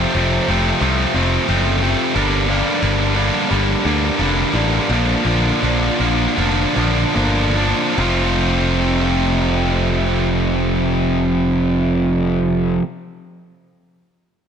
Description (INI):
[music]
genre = post-rock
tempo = 72-90 BPM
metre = 4/4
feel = straight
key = F major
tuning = A4 = 441 Hz
[part]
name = distorted electric guitar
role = riff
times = 0.0-12.8 s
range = F2 to F4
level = -16 LUFS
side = right 1 dB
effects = overdrive
[part]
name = modern bright picked electric bass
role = bass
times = 0.0-12.8 s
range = F1 to D2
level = -20 LUFS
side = equal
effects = none
[sound]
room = light reverb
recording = none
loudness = -15 LUFS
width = side -7 dB against mid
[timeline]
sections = 0.0-8.0 A section; 8.0-11.3 B section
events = slowing down 2.2-8.0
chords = 0.0 F; 2.2 Gm; 4.9 Bb; 8.0 F